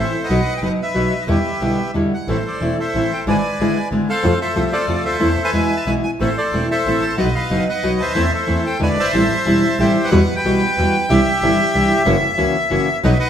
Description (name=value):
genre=tango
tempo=184 BPM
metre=3/4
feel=rubato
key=A minor, E minor from 10.1 s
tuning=A4 = 443 Hz
part: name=bandoneon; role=melody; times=0.0-13.3 s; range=F4 to A5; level=-19 LUFS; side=equal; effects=none
part: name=nylon-string guitar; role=accompaniment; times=0.0-13.1 s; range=B2 to G#4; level=-19 LUFS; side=left 1 dB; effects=none
part: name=clear double bass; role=bass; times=0.0-13.2 s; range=E1 to F2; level=-22 LUFS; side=right 1 dB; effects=none
room=wet stone room reverb, RT60 1.4 s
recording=band playing live in one room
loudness=-15 LUFS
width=side -9 dB against mid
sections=0.0-2.3 A section; 2.3-10.1 B section; 10.1-13.3 C section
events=none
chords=0.3 B; 1.3 Em7; 2.3 Am; 3.3 E7/G#; 4.2 F; 5.2 Am/E; 5.5 E; 6.2 Am; 7.2 B; 8.2 Am/E; 8.8 E7; 9.1 Am7; 10.1 Emadd9; 11.1 Cadd9; 12.1 F#7